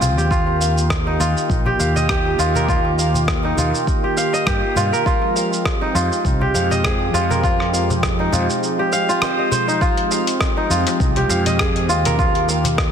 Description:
organic downtempo; 101 BPM; 4/4; swing 56% on 16ths; F minor; A4 = 442 Hz
warm analog pad; sustained chords; 0.0-12.9 s; Eb3 to G5; -24 LUFS; right 1 dB; chorus, sidechain pumping
kora; arpeggios; 0.0-12.9 s; C4 to F5; -20 LUFS; equal; digital delay
fretless electric bass; bass; 0.0-12.9 s; Bb1 to G2; -21 LUFS; equal; sidechain pumping
dusty soul sampler-style drum kit; drums; 0.0-12.9 s; cabasa, hi-hat, rim click; -24 LUFS; equal; soft clipping on snare
darbuka; percussion; 0.0-12.8 s; -29 LUFS; left 3 dB
electronic kick drum; drums; 0.3-12.9 s; -22 LUFS; equal
moderate lush hall reverb, RT60 1.9 s, digital ambience; dense, heavily limited modern master; -16 LUFS; side -8 dB against mid
0.0-9.8 A section; 9.8-12.9 B section
0.3 Eb; 5.1 Fm7; 12.2 Eb

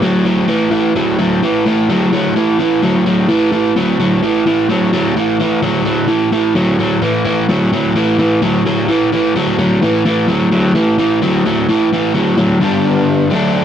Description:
rock; 129 BPM; 4/4; straight; A4 = 440 Hz
crunchy overdriven guitar; solo; 0.0-13.6 s; G2 to D4; -12 LUFS; equal
little or no reverb; dry, close 1970s-style studio recording; -12 LUFS; side -9 dB against mid
0.0-12.6 A section; 12.6-13.6 B section
0.0 A5; 12.6 G

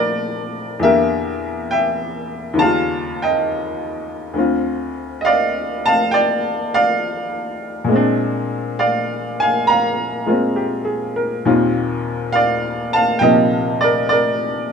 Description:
solo jazz; 68 BPM; 4/4; swing 68% on 8ths; Bb major; A4 = 445 Hz
clear upright piano; solo; 0.0-14.7 s; D2 to Bb5; -16 LUFS; equal
moderate studio reverb, RT60 0.8 s; band playing live in one room; -16 LUFS; side -6 dB against mid
0.0-14.7 A section
0.0 Bb6; 0.8 Em7b5; 2.6 Eb9; 4.4 Dm7; 7.9 Bb9; 11.4 Ebmaj13

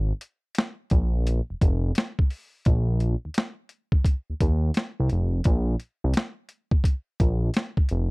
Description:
R&B, neo-soul; 86 BPM; 4/4; swing 63% on 16ths; A4 = 441 Hz
fat analog bass; bass; 0.0-8.1 s; F1 to Eb2; -23 LUFS; equal
boom bap sampler-style drum kit; drums; 0.2-8.1 s; hi-hat, kick drum, snare drum; -21 LUFS; equal
little or no reverb; dry, close 1970s-style studio recording; -22 LUFS; side -33 dB against mid
0.0-2.7 A section; 2.7-8.1 B section

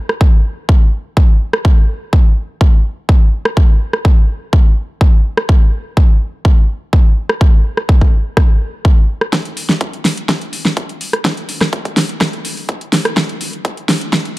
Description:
house; 125 BPM; 4/4; straight
deep house drum kit; drums; 0.1-14.3 s; hi-hat, rim click, snare drum; -16 LUFS; equal; overdrive, sidechain pumping on hats
electronic kick drum; drums; 0.2-14.2 s; -10 LUFS; equal; high-pass filter on kick, high-pass filter on room
little or no reverb; dark, warm production; -11 LUFS; side -20 dB against mid
0.0-9.3 A section; 9.3-14.4 B section
build-up 9.3-14.4; drum fill 9.3-14.4

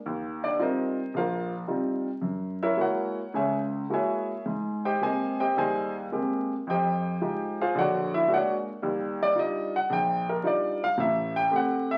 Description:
solo jazz; 110 BPM; 4/4; swing 69% on 8ths, rubato; A4 = 445 Hz
warm concert grand piano; solo; 0.1-12.0 s; A1 to G#5; -28 LUFS; equal
wet large studio reverb, RT60 0.9 s; very old 78 rpm record, vinyl crackle; -28 LUFS; mono
0.0-12.0 A section
grand piano solo 0.0-12.0
0.1 Eb69; 2.2 F#9; 4.5 Abmaj9; 6.7 Fm9; 7.8 Bb7alt; 8.8 Ebmaj9; 11.0 Am7

